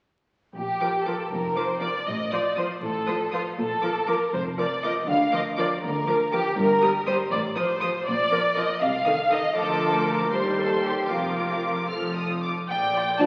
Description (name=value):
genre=quick classical-period movement for symphony orchestra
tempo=80 BPM (dotted quarters)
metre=6/8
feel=straight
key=Bb major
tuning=A4 = 440 Hz
part: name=rich chamber violin section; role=second line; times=0.6-13.3 s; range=F4 to F5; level=-27 LUFS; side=equal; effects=none
part: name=clear chamber double bass section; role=bass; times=0.6-13.3 s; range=F1 to Eb2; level=-40 LUFS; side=equal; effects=none
part: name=rich chamber cello section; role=bass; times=0.6-13.3 s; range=D2 to D3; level=-35 LUFS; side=equal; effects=none
part: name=clear chamber violin section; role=melody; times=0.8-13.3 s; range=G5 to F6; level=-34 LUFS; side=equal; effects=none
part: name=rich chamber viola section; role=accompaniment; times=0.8-13.3 s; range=Eb3 to D5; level=-32 LUFS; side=equal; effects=none
part: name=dark French horn section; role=sustained chords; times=13.2-13.3 s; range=F3 to D4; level=-20 LUFS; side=equal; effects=none
room=wet scoring stage reverb, RT60 2.1 s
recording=very old 78 rpm record, vinyl crackle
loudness=-25 LUFS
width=mono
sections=0.6-12.7 A section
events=none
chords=0.6 Bb; 2.1 F7/A; 3.6 Bb; 5.1 Bb/D; 6.6 Eb/G; 7.3 F7/A; 8.1 Bb; 8.8 Adim/C; 9.6 Bb/D; 10.3 Cm/Eb; 11.1 Bb/F; 11.9 F; 12.7 Bb